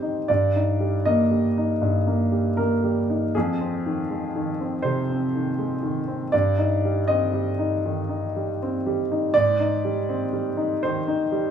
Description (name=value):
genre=neoclassical minimalist piano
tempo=80 BPM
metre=4/4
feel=rubato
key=F dorian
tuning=A4 = 440 Hz
part: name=clear grand piano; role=solo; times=0.0-11.5 s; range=F2 to Eb5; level=-21 LUFS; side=equal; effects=none
room=moderate large studio reverb, RT60 0.8 s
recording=band playing live in one room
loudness=-21 LUFS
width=side -8 dB against mid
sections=0.0-11.5 A section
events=none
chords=0.3 Ebmaj7/G; 3.3 Fm7; 6.3 Cm/G; 9.3 Abmaj7